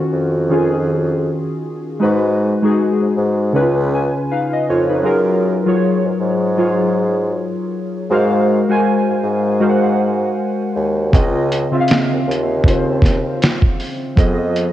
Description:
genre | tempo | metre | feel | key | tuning
lo-fi hip hop | 79 BPM | 4/4 | swing 59% on 16ths | unclear | A4 = 442 Hz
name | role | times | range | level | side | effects
warbly lo-fi synth keys | accompaniment | 0.0-14.7 s | Db3 to Ab5 | -16 LUFS | left 1 dB | chorus, low-pass filter, cassette tape
warm bassoon | bass | 0.0-14.7 s | Db2 to Ab2 | -19 LUFS | equal | none
dusty soul sampler-style drum kit | drums | 11.1-14.7 s | hi-hat, kick drum, snare drum | -15 LUFS | equal | cassette tape
room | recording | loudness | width
moderate lush hall reverb, RT60 2.1 s | home recording on cassette | -14 LUFS | side -13 dB against mid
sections
0.0-14.7 A section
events
synth keys fill 3.5-5.1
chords
0.0 Ebm9; 2.0 Abm7; 3.5 Db7; 5.1 Gbmaj9; 8.1 Ab13; 11.1 Dbmaj9; 14.2 Fm7b5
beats
0.50 1.26 | 2.02 2.78 3.54 4.30 | 5.06 5.82 6.58 7.34 | 8.10 8.86 9.62 10.38 | 11.14 11.89 12.65 13.41 | 14.17

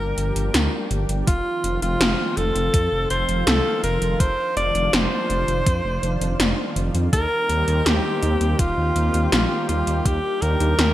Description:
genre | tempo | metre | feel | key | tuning
synthwave | 82 BPM | 4/4 | straight | unclear | A4 = 440 Hz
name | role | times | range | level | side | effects
clear alto saxophone | melody | 0.0-10.9 s | F4 to D5 | -23 LUFS | equal | digital delay
lush unison pad | sustained chords | 0.0-10.9 s | Eb3 to G4 | -29 LUFS | right 1 dB | chorus, sidechain pumping
dark detuned saw bass | bass | 0.0-10.9 s | Eb1 to F2 | -22 LUFS | equal | sidechain pumping
80s electronic pad drums | drums | 0.2-10.9 s | hi-hat, snare drum | -22 LUFS | equal | overdrive, gated reverb
electronic kick drum | drums | 1.3-10.2 s | none | -21 LUFS | equal | overdrive
room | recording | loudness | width
moderate plate reverb, RT60 2.1 s | bright 1980s-style digital production | -18 LUFS | side -14 dB against mid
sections
0.0-10.9 A section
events
none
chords
0.0 Gm7; 1.3 F7(no3); 7.1 Eb6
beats
0.54 | 1.27 2.01 2.74 3.47 | 4.20 4.93 5.67 6.40 | 7.13 7.86 8.59 9.32 | 10.05 10.79

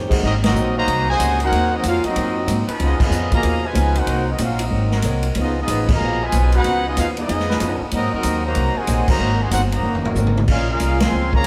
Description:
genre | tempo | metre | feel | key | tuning
jazz, big band swing | 187 BPM | 4/4 | swing 63% on 8ths | Ab major | A4 = 439 Hz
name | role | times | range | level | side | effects
picked swing-style acoustic guitar | accompaniment | 0.0-11.4 s | Ab2 to C5 | -30 LUFS | equal | none
upright bass | bass | 0.0-11.5 s | Gb1 to Ab2 | -23 LUFS | equal | none
swinging big-band drum kit | drums | 0.1-11.5 s | crash cymbal, hi-hat, kick drum, ride cymbal, snare drum, toms | -26 LUFS | equal | none
mellow trumpet section | melody | 0.2-11.5 s | Cb4 to C6 | -25 LUFS | equal | none
clear trombone section | second line | 0.2-11.5 s | Cb3 to Gb4 | -28 LUFS | equal | none
clear trombone section | sustained chords | 1.4-11.1 s | Eb3 to Cb5 | -34 LUFS | equal | none
room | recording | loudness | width
moderate echo chamber reverb, RT60 2.0 s | heard from further back in the room | -19 LUFS | mono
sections
0.2-11.5 A section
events
band accent 0.4, 3.0, 5.8, 9.1, 11.0; drum fill 9.9-10.5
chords
0.2 Ab9; 2.8 Db9; 4.1 Ab9; 5.4 Db9; 7.9 Ab9; 10.5 Bbm7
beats
| 0.23 0.55 0.88 1.20 | 1.52 1.84 2.16 2.48 | 2.80 3.12 3.44 3.76 | 4.08 4.40 4.72 5.04 | 5.36 5.68 6.00 6.33 | 6.65 6.97 7.29 7.61 | 7.93 8.25 8.57 8.89 | 9.21 9.53 9.85 10.17 | 10.49 10.81 11.13 11.46

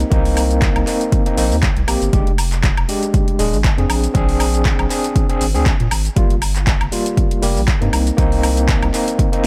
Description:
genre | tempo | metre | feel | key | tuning
deep house | 119 BPM | 4/4 | swing 55% on 16ths | unclear | A4 = 439 Hz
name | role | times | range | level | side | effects
overdriven tine electric piano | stabs | 0.0-9.5 s | G3 to Ab4 | -22 LUFS | equal | fast tremolo, sidechain pumping
round analog bass | bass | 0.0-9.5 s | D1 to Bb2 | -21 LUFS | equal | sidechain pumping
deep house drum kit | drums | 0.0-9.5 s | handclaps, hi-hat, shaker, snare drum, woodblock | -26 LUFS | equal | overdrive
electronic kick drum | drums | 0.1-9.3 s | none | -20 LUFS | equal | overdrive
room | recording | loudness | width
digital ambience | none | -16 LUFS | mono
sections
0.0-9.5 A section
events
none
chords
0.0 Cm7; 2.1 Fm69; 3.9 Bb9; 6.2 Gm7; 7.9 Cm7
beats
| 0.12 0.62 1.12 1.63 | 2.13 2.64 3.14 3.65 | 4.15 4.65 5.16 5.66 | 6.17 6.67 7.17 7.68 | 8.18 8.69 9.19

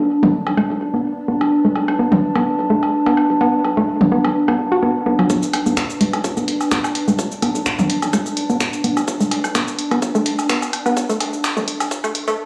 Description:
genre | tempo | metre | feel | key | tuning
minimal techno | 127 BPM | 4/4 | swing 54% on 16ths | B minor | A4 = 440 Hz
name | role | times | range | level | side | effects
hollow knocking FM bass | bass | 0.0-12.2 s | F#1 to B1 | -30 LUFS | equal | sidechain pumping, high-pass filter
swarming drone | texture | 0.0-12.4 s | D4 | -29 LUFS | equal | none
warbly tape-like pad | texture | 0.0-12.4 s | D4 to A5 | -24 LUFS | equal | chorus, built-in reverb, sidechain pumping
hollow square pluck | riff | 0.2-12.3 s | F#3 to F#4 | -22 LUFS | equal | chorus, sidechain pumping, dub echo
electronic toms and woodblock | percussion | 0.2-12.1 s | none | -24 LUFS | equal | digital delay
electronic kick drum | drums | 5.3-12.0 s | none | -25 LUFS | equal | high-pass filter on kick
punchy analog drum machine | drums | 5.3-12.4 s | cabasa, finger snaps, hi-hat | -26 LUFS | equal | none
room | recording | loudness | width
wet studio reverb, RT60 0.6 s | played on a big sound system in a bare room, large studio reverb, high-pass filter, small room ambience | -18 LUFS | mono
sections
0.0-5.3 A section; 5.3-12.5 B section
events
filter sweep on synth arpeggio sound 0.0-5.3, 5.3-12.5; build-up 5.3-12.5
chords
0.0 Bm7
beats
0.10 0.57 1.05 | 1.52 1.99 2.46 2.94 | 3.41 3.88 4.35 4.83 | 5.30 5.77 6.24 6.72 | 7.19 7.66 8.13 8.61 | 9.08 9.55 10.02 10.49 | 10.97 11.44 11.91 12.38

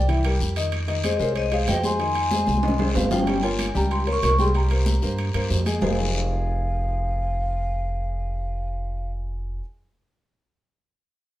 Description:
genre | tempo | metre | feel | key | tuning
Afro-Cuban jazz | 188 BPM | 4/4 | straight | F minor | A4 = 439 Hz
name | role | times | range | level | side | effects
vibraphone with medium hard mallets | melody | 0.0-9.6 s | Db5 to Db6 | -30 LUFS | equal | none
breathy mellow concert flute | second line | 0.0-9.1 s | C4 to Ab5 | -29 LUFS | left 2 dB | none
clear grand piano | accompaniment | 0.0-9.6 s | Eb3 to Ab5 | -29 LUFS | left 2 dB | none
upright bass | bass | 0.0-9.6 s | F1 to G2 | -24 LUFS | equal | none
congas | percussion | 0.1-5.9 s | none | -30 LUFS | left 1 dB | none
guiro | percussion | 0.1-5.9 s | none | -35 LUFS | left 4 dB | none
timbales | percussion | 0.1-5.9 s | none | -31 LUFS | right 3 dB | none
room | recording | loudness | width
moderate studio reverb, RT60 0.8 s | band playing live in one room | -21 LUFS | side -14 dB against mid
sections
0.0-3.3 A section; 3.3-5.8 B section; 5.8-8.4 C section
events
drum fill 2.5-3.3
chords
0.1 C7; 0.7 Fm9; 3.3 Gm7b5; 4.5 C5; 5.8 Fm7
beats
0.09 0.41 | 0.72 1.04 1.36 1.68 | 2.00 2.31 2.63 2.95 | 3.27 3.59 3.90 4.22 | 4.54 4.86 5.18 5.50 | 5.82 6.13 6.45 6.77 | 7.09 7.41 7.72 8.04

